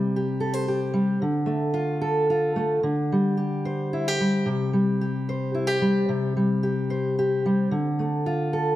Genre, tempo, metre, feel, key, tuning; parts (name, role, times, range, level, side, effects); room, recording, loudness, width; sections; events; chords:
folk, solo fingerstyle acoustic guitar; 112 BPM; 3/4; rubato; A4 = 441 Hz
fingerpicked steel-string acoustic guitar; solo; 0.0-8.8 s; C3 to C5; -22 LUFS; equal
light reverb; -22 LUFS; side -14 dB against mid
0.0-8.8 A section
0.0 C5; 1.2 Dm; 2.8 G5/D; 4.5 C5; 7.7 Dm